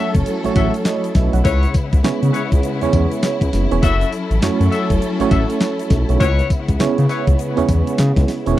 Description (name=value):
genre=R&B, new jack swing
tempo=101 BPM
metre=4/4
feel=swing 61% on 16ths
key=unclear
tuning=A4 = 440 Hz
part: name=FM electric piano with tremolo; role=accompaniment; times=0.0-8.6 s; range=A3 to F#5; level=-20 LUFS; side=right 7 dB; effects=none
part: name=warm symphonic string section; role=sustained chords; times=0.0-8.6 s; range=C#3 to A4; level=-24 LUFS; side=left 3 dB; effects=none
part: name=warm horn section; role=stabs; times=0.0-7.2 s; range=E4 to E5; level=-24 LUFS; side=left 7 dB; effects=tape echo
part: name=smooth synth bass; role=bass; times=0.1-8.6 s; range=E1 to C#3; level=-17 LUFS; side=equal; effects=none
part: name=clean 12-bit digital drum machine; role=drums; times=0.1-8.6 s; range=handclaps, hi-hat, kick drum, snare drum, tambourine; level=-18 LUFS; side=equal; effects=overdrive
part: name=egg shaker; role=percussion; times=0.1-8.6 s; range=none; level=-42 LUFS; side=left 16 dB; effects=none
room=little or no reverb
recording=dry, close 1970s-style studio recording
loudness=-14 LUFS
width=side -14 dB against mid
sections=0.0-8.6 A section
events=none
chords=0.0 F#m7; 1.5 C#m7; 3.8 F#m7; 6.2 C#m7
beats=0.26 0.86 | 1.45 2.04 2.64 3.23 | 3.83 4.42 5.01 5.61 | 6.20 6.80 7.39 7.99 | 8.58